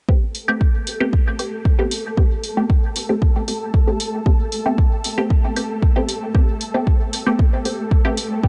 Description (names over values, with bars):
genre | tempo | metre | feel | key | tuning
dub techno | 115 BPM | 4/4 | straight | A minor | A4 = 440 Hz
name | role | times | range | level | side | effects
filtered dub chord stab | stabs | 0.1-8.5 s | A3 to G4 | -25 LUFS | equal | phaser, sidechain pumping, dub echo
electronic kick drum | drums | 0.1-8.5 s | none | -18 LUFS | equal | overdrive
flickering grainy texture | texture | 0.4-8.5 s | A3 to A4 | -30 LUFS | equal | built-in reverb, sidechain pumping
electronic hi-hat | drums | 0.3-8.3 s | none | -28 LUFS | equal | none
room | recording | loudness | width
little or no reverb | dry, gritty hardware recording, cassette tape, nothing above 10.5 kHz | -19 LUFS | mono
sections
0.1-8.5 A section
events
none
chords
0.1 Am9